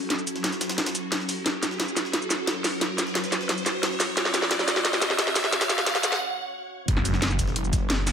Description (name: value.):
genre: dark technical drum and bass.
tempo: 177 BPM.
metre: 4/4.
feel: straight.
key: F# minor.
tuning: A4 = 440 Hz.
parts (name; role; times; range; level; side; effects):
swarming drone; sustained chords; 0.0-8.1 s; F#3 to C#5; -33 LUFS; equal; built-in reverb, sidechain pumping.
riser and impact; sound effects; 0.0-8.1 s; none; -31 LUFS; equal; none.
drum and bass drum kit; drums; 0.1-8.1 s; cabasa, hi-hat, snare drum; -24 LUFS; equal; none.
jungle sampler-style drum kit; drums; 0.1-8.1 s; hi-hat, snare drum; -34 LUFS; right 1 dB; high-pass filter on hats, high-pass filter on snare, high-pass filter on room.
phased detuned saw bass; bass; 6.9-8.1 s; F#1; -26 LUFS; equal; phaser, tube saturation.
electronic kick drum; drums; 6.9-7.8 s; none; -25 LUFS; equal; none.
room: moderate digital room reverb, RT60 1.1 s.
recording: high-pass filter.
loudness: -23 LUFS.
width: side -7 dB against mid.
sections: 0.0-6.9 A section; 6.9-8.1 B section.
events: build-up 0.0-6.9; drum fill 0.0-6.2; riser 0.0-6.2; break 6.2-6.9; drop 6.9-8.1; impact 6.9-8.1.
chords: 0.0 F#m.